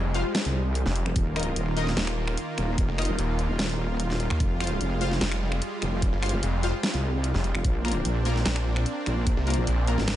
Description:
heavy wobble dubstep; 148 BPM; 4/4; half-time; F dorian; A4 = 439 Hz
supersaw pad; sustained chords; 0.0-10.2 s; Eb3 to F4; -32 LUFS; right 1 dB; sidechain pumping
snarling distorted saw bass; bass; 0.0-10.0 s; Eb1 to Eb2; -26 LUFS; equal; distortion, overdrive
orchestra-hit-like synth stab; stabs; 0.1-10.0 s; Bb3 to F5; -34 LUFS; left 3 dB; built-in reverb, tape echo
dubstep drum kit; drums; 0.1-10.2 s; finger snaps, hi-hat, snare drum; -31 LUFS; equal
wobble bass; bass; 0.5-10.2 s; Eb1 to C2; -27 LUFS; equal; chorus, overdrive
electronic kick drum; drums; 1.2-9.3 s; -25 LUFS; equal
little or no reverb; nothing above 10.7 kHz; -24 LUFS; side -12 dB against mid
0.0-10.2 A section
0.0 Fmadd9; 1.2 Ebsus2; 4.4 Fmadd9; 7.6 Bbadd9
0.35 0.75 | 1.16 1.56 1.97 2.38 | 2.78 3.19 3.59 4.00 | 4.40 4.81 5.21 5.62 | 6.02 6.43 6.83 7.24 | 7.65 8.05 8.46 8.86 | 9.27 9.67 10.08

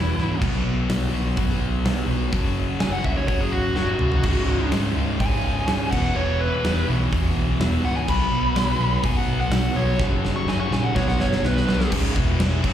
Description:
hard rock; 125 BPM; 4/4; straight; A4 = 439 Hz
dark smooth lead guitar; melody; 0.0-11.9 s; E4 to C#6; -26 LUFS; equal; overdrive, slapback echo, plate reverb
overdriven semi-hollow guitar; riff; 0.0-12.7 s; C#2 to B3; -29 LUFS; right 11 dB; phaser, slapback echo
sludgy distorted guitar; riff; 0.0-12.7 s; C#2 to B3; -27 LUFS; left 7 dB; overdrive, slapback echo
overdriven picked electric bass; bass; 0.0-12.7 s; C#1 to C#2; -25 LUFS; equal
huge arena drum kit; drums; 0.2-12.7 s; crash cymbal, hi-hat, kick drum, snare drum, toms; -25 LUFS; equal
tight distorted guitar; riff; 4.2-12.7 s; C#2 to B3; -33 LUFS; right 1 dB; distortion, slapback echo
light reverb; live gig heard through the venue's PA, club reverb; -19 LUFS; side -10 dB against mid
0.0-11.9 A section
lead electric guitar solo 0.0-11.9; drum fill 3.8-4.2, 10.0-11.9
0.4 B5; 2.3 F#5; 4.2 C#5; 5.9 E5; 8.1 B5; 10.0 F#; 11.0 B5; 11.9 C#5; 12.2 E5
| 0.41 0.89 1.37 1.85 | 2.33 2.81 3.29 3.77 | 4.25 4.73 5.21 5.68 | 6.16 6.64 7.12 7.60 | 8.08 8.56 9.04 9.52 | 10.00 10.47 10.96 11.43 | 11.91 12.39

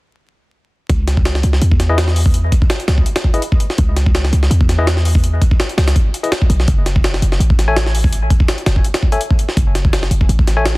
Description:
drum and bass, jungle; 166 BPM; 4/4; swing 54% on 16ths; C# minor; A4 = 440 Hz
warm 808-style bass; bass; 0.9-10.8 s; F#1 to E2; -14 LUFS; equal; tube saturation
jungle sampler-style drum kit; drums; 0.9-10.8 s; hi-hat, kick drum, snare drum; -14 LUFS; equal; small room ambience
bright tine electric piano; stabs; 1.9-10.6 s; E4 to G#5; -22 LUFS; left 3 dB; vintage 12-bit sampler grit, dub echo
digital ambience; dense, heavily limited modern master, vinyl crackle; -12 LUFS; side -22 dB against mid
0.9-10.8 A section
drop 0.9-10.8
0.9 C#m; 6.7 F#m
| 0.89 1.25 1.62 1.98 | 2.34 2.70 3.06 3.42 | 3.79 4.15 4.51 4.87 | 5.23 5.59 5.95 6.32 | 6.68 7.04 7.40 7.76 | 8.12 8.48 8.85 9.21 | 9.57 9.93 10.29 10.65

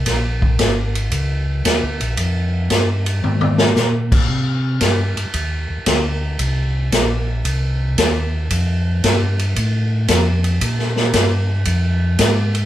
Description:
soul jazz organ trio; 114 BPM; 4/4; swing 68% on 8ths; Bb mixolydian; A4 = 439 Hz
mellow tonewheel organ; bass; 0.0-12.7 s; Ab1 to C3; -18 LUFS; equal; chorus vibrato, slow rotary speaker
swinging big-band drum kit; drums; 0.1-12.6 s; crash cymbal, hi-hat, kick drum, ride cymbal, snare drum, toms; -18 LUFS; equal
light reverb; band playing live in one room; -16 LUFS; side -12 dB against mid
0.0-12.7 A section
drum fill 3.2-3.8
| 0.07 0.59 1.12 1.65 | 2.18 2.71 3.23 3.76 | 4.29 4.82 5.34 5.87 | 6.40 6.93 7.45 7.98 | 8.51 9.04 9.56 10.09 | 10.62 11.14 11.67 12.20

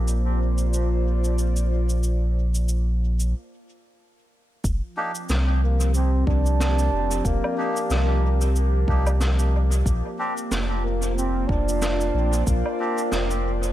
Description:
ambient dub; 92 BPM; 4/4; swing 56% on 16ths; A4 = 440 Hz
airy breathy pad; sustained chords; 0.0-13.7 s; F3 to D5; -30 LUFS; equal; chorus
warm sub bass; bass; 0.0-13.7 s; F1 to C2; -21 LUFS; equal
cabasa, snare drum and woodblock; drums; 0.1-13.7 s; -31 LUFS; equal; dub echo
electronic kick drum; drums; 4.6-12.6 s; -25 LUFS; equal
melodica; stabs; 5.0-13.0 s; Bb3 to G4; -33 LUFS; equal; low-pass filter, dub echo
mellow trombone; melody; 5.6-13.7 s; Bb3 to D4; -29 LUFS; right 1 dB; dub echo
light reverb; -20 LUFS; side -14 dB against mid
0.0-4.6 A section; 4.6-13.7 B section
break 3.3-4.6
0.0 Bb69; 4.6 Fsus4; 9.9 Bb69
0.08 0.73 1.38 | 2.03 2.69 3.34 3.99 | 4.64 5.29 5.95 6.60 | 7.25 7.90 8.55 9.21 | 9.86 10.51 11.16 11.82 | 12.47 13.12

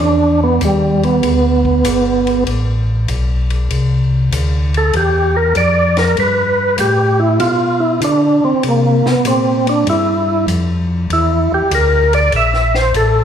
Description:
soul jazz organ trio; 97 BPM; 4/4; swing 68% on 8ths; G mixolydian; A4 = 440 Hz
percussive tonewheel organ; melody; 0.0-13.2 s; G3 to E5; -13 LUFS; right 1 dB; slow rotary speaker, overdrive, chorus vibrato
mellow tonewheel organ; bass; 0.0-13.2 s; G1 to D3; -16 LUFS; left 1 dB; slow rotary speaker
compact cocktail drum kit; drums; 0.6-13.1 s; hi-hat, kick drum, ride cymbal, snare drum; -25 LUFS; left 5 dB
wet recital hall reverb, RT60 1.6 s; recorded in a church or concert hall; -12 LUFS; side -8 dB against mid
0.0-13.2 A section
tonewheel organ solo 0.0-13.2
0.0 Gadd9; 3.7 Cadd9; 6.2 Gadd9; 8.6 C9
0.61 | 1.23 1.85 2.47 3.09 | 3.71 4.33 4.94 5.56 | 6.18 6.79 7.41 8.03 | 8.64 9.26 9.87 10.49 | 11.10 11.72 12.33 12.95

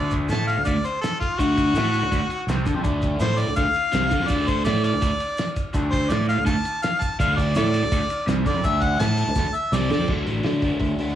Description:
garage rock duo or trio; 166 BPM; 4/4; straight; A4 = 437 Hz
bright harmonica; melody; 0.0-10.1 s; F4 to A5; -24 LUFS; left 1 dB; overdrive, cassette tape, analog delay
crunchy overdriven guitar; riff; 0.0-11.2 s; C3 to A4; -25 LUFS; equal; phaser, cassette tape
growling fingered electric bass; bass; 0.0-11.1 s; A1 to D3; -25 LUFS; equal; overdrive
cloth-damped thuddy drum kit; drums; 0.1-11.1 s; crash cymbal, hi-hat, kick drum, ride cymbal, snare drum; -27 LUFS; equal; cassette tape
tube shaker; percussion; 0.1-10.0 s; -46 LUFS; right 5 dB
light reverb, small room ambience; home recording on cassette; -20 LUFS; side -11 dB against mid
0.0-10.1 A section; 10.1-11.2 B section
harmonica solo 0.0-10.1; drum fill 9.4-10.1
0.0 D5; 10.1 D
0.30 0.67 1.03 | 1.39 1.75 2.12 2.48 | 2.84 3.21 3.57 3.93 | 4.29 4.66 5.02 5.38 | 5.74 6.10 6.47 6.83 | 7.19 7.55 7.91 8.28 | 8.64 9.00 9.36 9.72 | 10.09 10.45 10.81

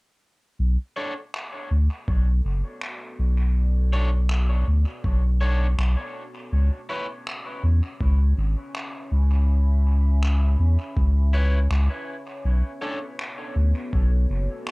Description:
ambient dub; 81 BPM; 4/4; swing 54% on 16ths; B dorian; A4 = 442 Hz
deep dark ambient pad; sustained chords; 1.6-14.7 s; B3 to B5; -39 LUFS; left 1 dB; chorus, built-in reverb, cassette tape
warm sub bass; bass; 0.6-14.5 s; F#1 to E2; -19 LUFS; equal; tube saturation
electric guitar at the edge of break-up; stabs; 1.0-13.0 s; D4 to C#5; -34 LUFS; equal; cassette tape, dub echo
finger snaps; drums; 1.3-14.7 s; -36 LUFS; equal; dub echo
electronic kick drum; drums; 2.1-14.1 s; -25 LUFS; equal
little or no reverb; home recording on cassette; -20 LUFS; side -28 dB against mid
0.6-14.7 A section
fade-in on ambient pad 0.6-14.7
0.6 Bm9; 6.5 C#m7; 12.5 Bm9
| 0.60 1.34 2.08 2.82 | 3.56 4.30 5.04 5.79 | 6.53 7.27 8.01 8.75 | 9.49 10.23 10.97 11.71 | 12.45 13.19 13.93 14.67

